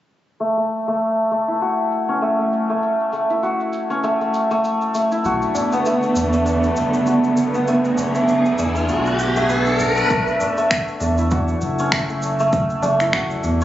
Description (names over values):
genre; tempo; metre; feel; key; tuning
organic downtempo; 99 BPM; 4/4; swing 56% on 16ths; unclear; A4 = 441 Hz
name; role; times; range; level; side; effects
santur; arpeggios; 0.4-13.6 s; A3 to B4; -19 LUFS; equal; low-pass filter, tape echo
electronic shaker and finger snaps; drums; 0.4-13.6 s; none; -26 LUFS; equal; low-pass filter on perc, studio ambience, low-pass filter on snare
dark studio string section; sustained chords; 5.2-10.1 s; D3 to G#4; -21 LUFS; right 2 dB; sidechain pumping
round analog bass; bass; 5.2-13.6 s; F#1 to E2; -24 LUFS; equal; none
riser; sound effects; 6.9-10.1 s; none; -24 LUFS; equal; none
tabla; percussion; 5.5-13.6 s; none; -30 LUFS; left 1 dB; none
electronic kick drum; drums; 10.1-13.3 s; none; -25 LUFS; equal; studio ambience
room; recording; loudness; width
moderate lush hall reverb, RT60 2.5 s; recorded on a phone in the room, club reverb, nothing above 7.8 kHz; -17 LUFS; side -13 dB against mid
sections
0.4-10.1 A section; 10.1-13.6 B section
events
filter sweep on santur 0.4-10.1; riser 6.9-10.1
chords
0.4 F#m7; 5.3 Bm7; 10.1 F#m7